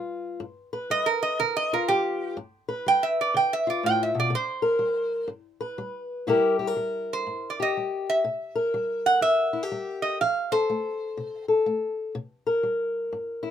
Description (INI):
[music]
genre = acoustic country blues, solo or duo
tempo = 123 BPM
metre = 4/4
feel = swing 64% on 8ths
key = C mixolydian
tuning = A4 = 438 Hz
[part]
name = fingerpicked old ladder-braced acoustic guitar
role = accompaniment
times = 0.0-13.5 s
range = G2 to B4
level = -26 LUFS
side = left 2 dB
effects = none
[part]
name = metal-body resonator slide guitar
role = melody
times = 0.9-11.5 s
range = G4 to G5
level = -24 LUFS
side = right 3 dB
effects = none
[sound]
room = moderate booth ambience, RT60 0.2 s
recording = minimal, uncompressed stereo recording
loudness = -23 LUFS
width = side -9 dB against mid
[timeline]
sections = 0.0-6.3 A section; 6.3-13.5 B section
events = resonator guitar played with a steel bar solo 0.0-6.3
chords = 0.0 G7; 4.3 C5; 5.3 G; 6.3 C7; 10.2 F; 12.2 C7(no3)